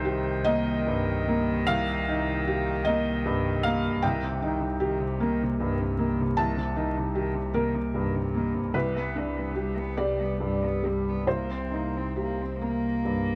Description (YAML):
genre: neoclassical piano and strings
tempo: 45-51 BPM (dotted quarters)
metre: 6/8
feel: rubato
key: C dorian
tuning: A4 = 441 Hz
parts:
  - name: rich cello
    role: second line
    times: 0.0-13.4 s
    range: C3 to C4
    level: -36 LUFS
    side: equal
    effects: none
  - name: felt-muted upright piano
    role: accompaniment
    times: 0.0-13.4 s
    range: C2 to A5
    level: -29 LUFS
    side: equal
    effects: none
  - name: warm double bass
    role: bass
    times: 0.0-13.4 s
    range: C2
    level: -35 LUFS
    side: equal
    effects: none
room: light reverb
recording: vinyl crackle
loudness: -27 LUFS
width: mono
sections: 0.0-13.4 A section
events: none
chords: 0.0 Cm7; 8.7 G/C; 11.3 Cm7